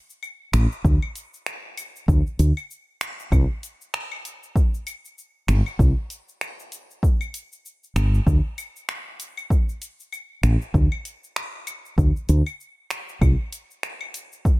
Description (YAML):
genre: sunset chillout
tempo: 97 BPM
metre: 4/4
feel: swing 57% on 16ths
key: unclear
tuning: A4 = 445 Hz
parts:
  - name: deep house drum kit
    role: drums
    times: 0.1-14.6 s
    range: claves, finger snaps, hi-hat, shaker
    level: -32 LUFS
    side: equal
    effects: none
  - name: woody fretless electric bass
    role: bass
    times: 0.5-13.3 s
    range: G1 to D2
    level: -18 LUFS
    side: equal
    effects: none
  - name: electronic kick drum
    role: drums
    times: 0.8-14.6 s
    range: none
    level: -20 LUFS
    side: equal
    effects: none
room: little or no reverb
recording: none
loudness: -21 LUFS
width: side -21 dB against mid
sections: 0.0-14.6 A section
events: none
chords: none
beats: 0.23 | 0.84 1.46 2.08 2.70 | 3.32 3.94 4.56 5.17 | 5.79 6.41 7.03 7.65 | 8.27 8.89 9.51 10.12 | 10.74 11.36 11.98 12.60 | 13.22 13.84 14.45